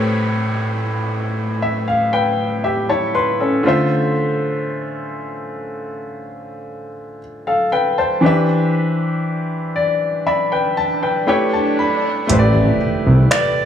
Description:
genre	contemporary R&B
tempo	59 BPM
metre	4/4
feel	straight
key	D dorian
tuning	A4 = 439 Hz
part	clear baby grand piano	accompaniment	0.0-13.7 s	A2 to C6	-17 LUFS	left 1 dB	none
part	downlifter, swell and impact	sound effects	0.0-13.7 s	none	-27 LUFS	right 1 dB	none
part	nylon-string guitar	arpeggios	12.3-13.7 s	A3 to B4	-22 LUFS	right 6 dB	digital delay
part	fat analog bass	bass	12.3-13.3 s	A1 to C2	-12 LUFS	equal	none
part	smooth R&B drum kit	drums	12.3-13.6 s	finger snaps, hi-hat	-20 LUFS	right 1 dB	overdrive
part	clear baby grand piano	melody	13.3-13.7 s	D5	-17 LUFS	right 1 dB	none
room	light reverb, studio reverb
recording	small room ambience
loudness	-15 LUFS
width	side -9 dB against mid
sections	0.0-12.3 A section; 12.3-13.7 B section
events	grand piano fill 1.1-4.2, 9.2-12.3; swell 4.4-12.3; kick muted 12.3-13.7; impact 12.3-13.7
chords	0.0 A7; 3.7 Dm7; 8.2 Em7; 11.3 A7; 12.3 A9sus4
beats	| 0.09 1.11 2.13 3.14 | 4.16 5.18 6.19 7.21 | 8.23 9.24 10.26 11.28 | 12.29 13.31

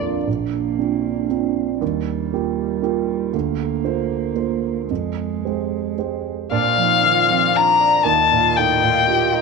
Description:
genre	neoclassical piano and strings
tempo	117 BPM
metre	3/4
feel	rubato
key	Bb major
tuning	A4 = 440 Hz
part	muted cello	second line	0.0-9.4 s	G3 to G4	-27 LUFS	right 11 dB	none
part	dark concert grand piano	accompaniment	0.0-9.4 s	Bb1 to Bb5	-22 LUFS	right 10 dB	none
part	hand-pumped harmonium	sustained chords	0.0-0.3, 6.5-9.4 s	Bb3 to Eb5	-28 LUFS	left 3 dB	none
part	muted violin	melody	6.5-9.4 s	F5 to Bb5	-15 LUFS	left 8 dB	none
room	light reverb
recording	1960s-style stereo with parts hard left and right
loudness	-17 LUFS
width	side -4 dB against mid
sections	0.3-6.5 A section; 6.5-9.4 B section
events	none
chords	0.3 Bbadd9; 1.8 Ebadd9; 3.3 Bbadd9/D; 4.9 Fmadd9; 6.5 Bbadd9; 8.1 Ebadd9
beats	| 0.27 0.79 1.30 | 1.81 2.32 2.83 | 3.34 3.85 4.36 | 4.90 5.44 5.98 | 6.51 7.03 7.54 | 8.06 8.56 9.07

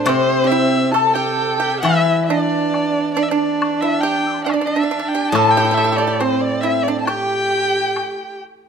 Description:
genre	chinese traditional, Chinese chamber ensemble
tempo	68 BPM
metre	2/4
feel	rubato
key	G zhi mode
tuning	A4 = 441 Hz
part	rich erhu	melody	0.0-8.4 s	C5 to A5	-22 LUFS	left 1 dB	none
part	bright horsehead fiddle	second line	0.0-8.4 s	C4 to A4	-20 LUFS	right 5 dB	none
part	mellow large dizi	second line	0.0-8.4 s	C5 to E6	-23 LUFS	left 7 dB	none
part	pipa	second line	0.0-8.4 s	C4 to A4	-23 LUFS	right 7 dB	none
part	steel-string zither	accompaniment	0.0-8.0 s	A2 to E3	-23 LUFS	left 3 dB	none
part	woodblock	percussion	0.1-8.2 s	none	-28 LUFS	left 3 dB	none
room	moderate recital hall reverb, RT60 1.7 s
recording	close, detailed microphones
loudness	-15 LUFS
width	side -6 dB against mid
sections	0.0-8.7 A section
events	none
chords	none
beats	| 0.07 0.95 | 1.85 2.74 | 3.62 4.49 | 5.35 6.21 | 7.08 7.96

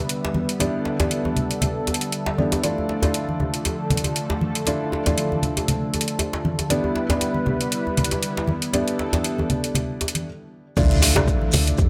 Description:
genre	afro house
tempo	118 BPM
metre	4/4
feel	swing 55% on 16ths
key	D dorian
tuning	A4 = 439 Hz
part	warm analog pad	sustained chords	0.0-11.9 s	D3 to E5	-30 LUFS	equal	chorus, sidechain pumping
part	felt-muted upright piano	stabs	0.0-11.9 s	A3 to D5	-29 LUFS	equal	sidechain pumping, delay
part	afro-pop drum kit	drums	0.1-11.9 s	crash cymbal, hi-hat, rim click	-27 LUFS	equal	studio reverb
part	djembe	percussion	0.2-11.9 s	none	-30 LUFS	equal	none
part	congas	percussion	0.3-11.6 s	none	-29 LUFS	equal	none
part	woody FM bass	bass	10.8-11.9 s	D2 to F2	-23 LUFS	equal	sidechain pumping
part	electronic kick drum	drums	10.8-11.9 s	none	-22 LUFS	equal	studio reverb
part	shekere	percussion	10.8-11.9 s	none	-35 LUFS	equal	none
part	impact	sound effects	10.8-11.9 s	none	-29 LUFS	equal	none
room	light reverb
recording	none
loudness	-23 LUFS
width	mono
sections	0.0-10.8 A section; 10.8-11.9 B section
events	filter sweep on analog synth pad 0.0-10.8; stop 10.3-10.8; drop 10.8-11.9; impact 10.8-11.9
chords	0.0 Em7; 2.6 Dmadd9; 6.7 Em7; 10.8 Dmadd9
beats	0.09 | 0.60 1.11 1.62 2.13 | 2.63 3.14 3.65 4.16 | 4.67 5.18 5.69 6.19 | 6.70 7.21 7.72 8.23 | 8.74 9.24 9.75 10.26 | 10.77 11.28 11.79

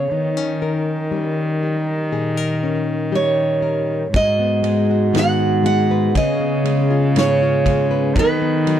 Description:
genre	acoustic folk-pop ballad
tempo	60 BPM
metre	4/4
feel	straight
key	G# minor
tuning	A4 = 441 Hz
part	picked steel-string acoustic guitar	melody	0.0-8.8 s	B4 to F#5	-20 LUFS	right 3 dB	none
part	nylon-string guitar	accompaniment	0.0-8.8 s	G#2 to B4	-22 LUFS	left 7 dB	none
part	warm cello	bass	0.0-8.8 s	G#2 to D#3	-20 LUFS	equal	none
part	mellow French horn	second line	4.1-8.8 s	C#4 to F#4	-24 LUFS	right 11 dB	none
part	loose indie drum kit	drums	4.1-8.8 s	kick drum, ride cymbal, snare drum	-22 LUFS	equal	none
room	studio reverb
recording	dry, close 1970s-style studio recording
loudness	-16 LUFS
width	side -10 dB against mid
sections	0.0-4.1 A section; 4.1-8.8 B section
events	none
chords	0.1 D#7; 4.1 G#m7; 6.1 C#7; 8.1 B7/D#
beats	| 0.12 1.12 2.13 3.13 | 4.14 5.14 6.14 7.15 | 8.15

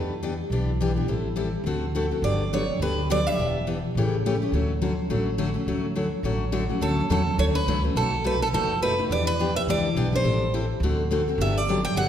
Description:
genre	acoustic string swing (jazz manouche)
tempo	209 BPM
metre	4/4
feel	swing 56% on 8ths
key	D major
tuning	A4 = 445 Hz
part	picked steel-string acoustic guitar	accompaniment	0.0-12.1 s	B2 to A4	-26 LUFS	left 2 dB	none
part	upright bass	bass	0.0-12.1 s	E1 to E2	-27 LUFS	right 1 dB	none
part	picked steel-string acoustic guitar	melody	2.2-3.7, 6.8-12.1 s	A4 to G5	-26 LUFS	right 2 dB	none
room	wet scoring stage reverb, RT60 1.5 s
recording	recorded in a church or concert hall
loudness	-22 LUFS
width	side -9 dB against mid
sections	0.0-6.8 A section; 6.8-12.1 A section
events	none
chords	0.0 Em7; 1.1 Am7; 1.7 D7; 2.2 Gmaj7; 3.4 Em7; 4.0 A7; 4.5 Dmaj7; 8.0 B7; 9.1 Em7; 10.3 Am7; 10.8 D7; 11.4 Gmaj7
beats	0.22 0.51 0.80 | 1.08 1.37 1.66 1.95 | 2.23 2.52 2.80 3.09 | 3.38 3.66 3.95 4.24 | 4.52 4.81 5.10 5.38 | 5.67 5.96 6.24 6.53 | 6.81 7.10 7.39 7.67 | 7.96 8.25 8.53 8.82 | 9.11 9.39 9.68 9.96 | 10.25 10.54 10.82 11.11 | 11.40 11.68 11.97

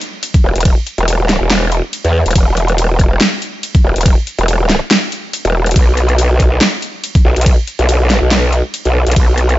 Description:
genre	heavy wobble dubstep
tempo	141 BPM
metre	4/4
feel	swing 54% on 16ths, half-time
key	unclear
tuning	A4 = 440 Hz
part	dubstep drum kit	drums	0.0-9.6 s	hi-hat, ride cymbal, snare drum	-17 LUFS	equal	none
part	electronic kick drum	drums	0.3-9.3 s	none	-10 LUFS	equal	overdrive
part	growl bass	bass	0.4-9.6 s	E1 to E2	-12 LUFS	equal	chorus, overdrive
room	digital ambience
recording	nothing above 7.8 kHz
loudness	-11 LUFS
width	side -16 dB against mid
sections	0.0-9.6 A section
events	none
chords	none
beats	0.23 | 0.65 1.08 1.50 1.93 | 2.35 2.78 3.21 3.63 | 4.06 4.48 4.91 5.33 | 5.76 6.18 6.61 7.04 | 7.46 7.89 8.31 8.74 | 9.16

